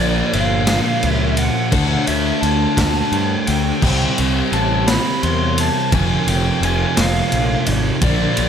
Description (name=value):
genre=quiet-loud alternative rock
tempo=57 BPM (dotted quarters)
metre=6/8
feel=straight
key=unclear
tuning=A4 = 439 Hz
part: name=lead guitar through a small cranked amp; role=melody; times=0.0-8.5 s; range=D5 to C6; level=-23 LUFS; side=equal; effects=overdrive
part: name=overdriven electric guitar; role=riff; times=0.0-8.5 s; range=F2 to D4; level=-23 LUFS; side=left 16 dB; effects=none
part: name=thick fuzz guitar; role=riff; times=0.0-8.5 s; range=F2 to D4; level=-22 LUFS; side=right 11 dB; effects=distortion
part: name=fuzz picked electric bass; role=bass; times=0.0-8.5 s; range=F1 to G2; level=-20 LUFS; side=equal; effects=overdrive
part: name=raw garage drum kit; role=drums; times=0.3-8.5 s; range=crash cymbal, kick drum, ride cymbal, snare drum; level=-20 LUFS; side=equal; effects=none
room=little or no reverb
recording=none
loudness=-15 LUFS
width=side -8 dB against mid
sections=0.0-8.5 A section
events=none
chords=0.0 Bb; 1.7 D5; 3.8 C; 5.9 Fm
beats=0.69 | 1.73 2.78 | 3.83 4.88 | 5.92 6.97 | 8.02